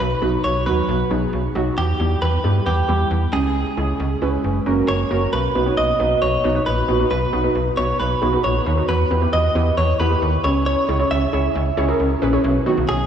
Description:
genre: synth-pop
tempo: 135 BPM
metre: 4/4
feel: straight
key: B major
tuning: A4 = 439 Hz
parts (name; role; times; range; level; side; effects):
- direct-recorded clean electric guitar; melody; 0.0-13.1 s; G4 to E5; -22 LUFS; equal; shimmer reverb, analog delay
- slap-like FM bass; bass; 0.0-13.0 s; F#1 to G2; -21 LUFS; equal; none
- warbly dusty pluck; accompaniment; 0.2-12.8 s; D#3 to C#5; -21 LUFS; right 1 dB; chorus, shimmer reverb
room: wet lush hall reverb, RT60 2.8 s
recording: dreamy mix soaked in reverb, studio ambience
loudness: -17 LUFS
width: side -8 dB against mid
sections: 0.0-5.3 A section; 5.3-12.4 B section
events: none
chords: 0.0 B; 1.8 Em; 3.3 C#m; 4.4 F#; 5.3 B; 8.9 Em; 10.4 C#m; 12.4 B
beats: | 0.00 0.44 0.89 1.33 | 1.77 2.22 2.66 3.11 | 3.55 4.00 4.44 4.88 | 5.33 5.77 6.22 6.66 | 7.11 7.55 8.00 8.44 | 8.88 9.33 9.77 10.22 | 10.66 11.11 11.55 12.00 | 12.44 12.88

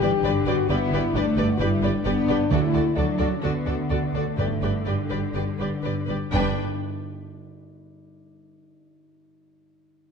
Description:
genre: cinematic, heroic adventure film score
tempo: 120-133 BPM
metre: 4/4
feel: straight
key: G major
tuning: A4 = 443 Hz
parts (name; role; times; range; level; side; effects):
- warm symphonic violin section; melody; 0.0-6.6 s; D5 to G5; -33 LUFS; left 2 dB; none
- rich symphonic violin section; second line; 0.0-6.6 s; A4 to B4; -34 LUFS; left 3 dB; none
- warm symphonic viola section; accompaniment; 0.0-6.6 s; D4 to G4; -34 LUFS; right 2 dB; none
- mellow French horn section; sustained chords; 0.0-6.5 s; G3 to G4; -27 LUFS; left 6 dB; none
- concert harp; arpeggios; 0.0-8.3 s; G2 to D5; -31 LUFS; left 7 dB; none
- dark symphonic cello section; bass; 0.0-6.6 s; G2 to B3; -29 LUFS; right 2 dB; none
- warm symphonic double bass section; bass; 0.0-6.6 s; G1 to D2; -27 LUFS; right 4 dB; none
- timpani; percussion; 2.5-6.6 s; G2 to D3; -30 LUFS; right 4 dB; none
room: moderate scoring stage reverb, RT60 1.6 s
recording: dark, warm production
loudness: -21 LUFS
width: side -6 dB against mid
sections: 0.0-6.3 A section; 6.3-8.3 B section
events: slowing down 1.6-6.3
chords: 0.0 G; 2.5 D; 4.4 G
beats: 0.24 | 0.69 1.15 1.60 2.05 | 2.50 2.96 3.42 3.90 | 4.38 4.86 5.35 5.84 | 6.34 6.83 7.32 7.80

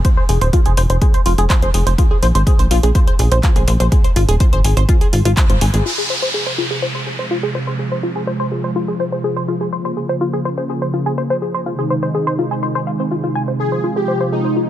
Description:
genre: melodic techno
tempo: 124 BPM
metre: 4/4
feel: straight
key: F minor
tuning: A4 = 440 Hz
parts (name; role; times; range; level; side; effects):
- tight sequenced synth; arpeggios; 0.0-14.6 s; C4 to Ab5; -20 LUFS; left 1 dB; chorus, vintage 12-bit sampler grit, sidechain pumping, dub echo
- electronic kick drum; drums; 0.0-5.5 s; none; -14 LUFS; equal; none
- techno drum kit; drums; 0.0-5.8 s; handclaps, hi-hat; -25 LUFS; right 1 dB; low-pass filter on hats, low-pass filter on snare, low-pass filter on room
- plucky analog bass; bass; 0.3-5.8 s; Eb1 to Bb1; -14 LUFS; equal; sidechain pumping
- warm analog pad; sustained chords; 5.9-14.7 s; C3 to F4; -21 LUFS; right 1 dB; chorus, vintage 12-bit sampler grit, sidechain pumping
- downlifter; sound effects; 5.9-9.7 s; none; -23 LUFS; equal; none
- soft supersaw; melody; 13.6-14.5 s; Eb4 to Ab4; -20 LUFS; equal; analog chorus, sidechain pumping
room: little or no reverb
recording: none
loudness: -14 LUFS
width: side -12 dB against mid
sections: 0.0-5.9 A section; 5.9-14.7 B section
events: filter sweep on synth arpeggio sound 0.0-5.9; band accent 5.4; filter sweep on analog synth pad 5.9-14.7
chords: 0.0 Ab; 2.0 Bb5; 3.9 Ab; 5.9 Fm; 9.7 Bbm; 11.7 Ab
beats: | 0.05 0.53 1.02 1.50 | 1.98 2.47 2.95 3.44 | 3.92 4.40 4.89 5.37 | 5.86 6.34 6.82 7.31 | 7.79 8.27 8.76 9.24 | 9.73 10.21 10.69 11.18 | 11.66 12.14 12.63 13.11 | 13.60 14.08 14.56

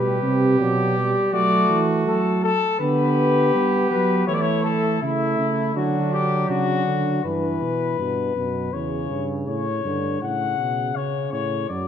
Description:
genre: classical, imitative canzona for brass ensemble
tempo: 81 BPM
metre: 4/4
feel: straight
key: G major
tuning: A4 = 440 Hz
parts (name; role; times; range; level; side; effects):
- mellow trumpet; melody; 0.0-11.9 s; E4 to F#5; -24 LUFS; left 7 dB; none
- clear flugelhorn; second line; 0.0-7.2 s; D4 to G4; -26 LUFS; right 3 dB; none
- mellow trombone; accompaniment; 0.0-11.9 s; B2 to B3; -26 LUFS; right 2 dB; none
- mellow tuba; bass; 0.0-11.9 s; E2 to G3; -24 LUFS; right 3 dB; none
room: wet recital hall reverb, RT60 1.8 s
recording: dark, warm production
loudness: -19 LUFS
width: side -8 dB against mid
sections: 0.0-7.2 A section; 7.2-11.9 B section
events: none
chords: 0.0 G/B; 1.3 D; 2.8 G/D; 4.3 A/E; 5.8 D; 7.2 Em/G; 8.7 C#dim/E; 10.2 F#m/A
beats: 0.60 | 1.33 2.07 2.81 3.54 | 4.28 5.02 5.76 6.50 | 7.24 7.99 8.73 9.47 | 10.22 10.96 11.70

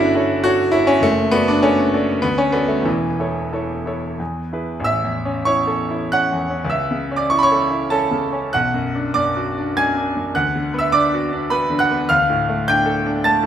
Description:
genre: classical, romantic character piece for solo piano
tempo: 89-108 BPM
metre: 3/4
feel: rubato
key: A major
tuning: A4 = 440 Hz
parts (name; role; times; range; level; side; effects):
- bright grand piano; solo; 0.0-13.5 s; E1 to A6; -16 LUFS; equal; none
room: moderate recital hall reverb, RT60 1.4 s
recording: none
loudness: -16 LUFS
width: side -9 dB against mid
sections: 0.0-4.8 A section; 4.8-13.5 B section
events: none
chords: 0.0 A7/G; 1.0 D/F#; 2.2 D; 2.9 A/E; 4.2 E; 4.8 A; 6.7 A/C#; 8.5 Bm; 10.4 Bm/D; 12.1 Dm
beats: 0.44 | 1.02 1.62 2.23 | 2.87 3.53 4.19 | 4.85 5.46 6.10 | 6.70 7.29 7.89 | 8.53 9.15 9.79 | 10.37 10.95 11.53 | 12.11 12.69 13.25

